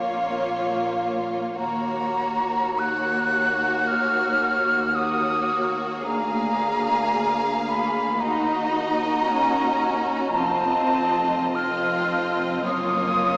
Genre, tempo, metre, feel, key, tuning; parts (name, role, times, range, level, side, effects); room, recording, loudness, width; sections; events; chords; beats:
classical, slow romantic movement for symphony orchestra; 48-57 BPM; 4/4; rubato; A4 = 440 Hz
rich studio violin section; melody; 0.0-13.4 s; Db5 to F5; -32 LUFS; equal
clear studio violin section; second line; 0.0-13.4 s; F4 to Ab4; -29 LUFS; equal
silver concert flute; second line; 0.0-13.4 s; F5 to Gb6; -22 LUFS; equal
rich studio viola section; accompaniment; 0.0-13.4 s; Bb3 to Eb4; -30 LUFS; equal
rich studio double bass section; bass; 0.0-13.4 s; F1 to Eb2; -35 LUFS; equal
warm studio cello section; bass; 0.0-13.4 s; D2 to Bb2; -32 LUFS; equal
wet cathedral reverb, RT60 4.8 s; small speaker sound; -20 LUFS; side -29 dB against mid
0.0-13.4 A section
0.0 Bbm; 1.6 Ebm7; 6.1 Bb7/D; 8.2 Ebm; 10.4 F7; 12.6 Gbmaj7
0.36 | 1.58 2.79 3.88 4.96 | 6.05 7.14 8.20 9.27 | 10.35 11.54 12.65